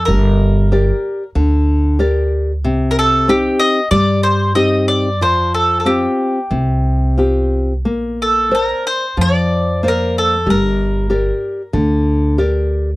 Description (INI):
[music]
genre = fado-style ballad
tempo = 93 BPM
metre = 4/4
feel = rubato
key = unclear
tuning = A4 = 440 Hz
[part]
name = mandolin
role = melody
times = 0.0-11.7 s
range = G4 to Eb5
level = -17 LUFS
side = equal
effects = none
[part]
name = upright bass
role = bass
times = 0.0-13.0 s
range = G1 to G2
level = -17 LUFS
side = right 1 dB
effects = none
[part]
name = nylon-string guitar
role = accompaniment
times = 0.1-12.9 s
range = C3 to D5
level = -17 LUFS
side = left 1 dB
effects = none
[sound]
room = little or no reverb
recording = dry, close 1970s-style studio recording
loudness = -13 LUFS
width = side -19 dB against mid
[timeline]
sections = 0.0-13.0 A section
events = none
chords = 0.1 Gm; 2.6 Cm; 5.2 Fsus2; 7.9 Bbadd9; 10.5 Gm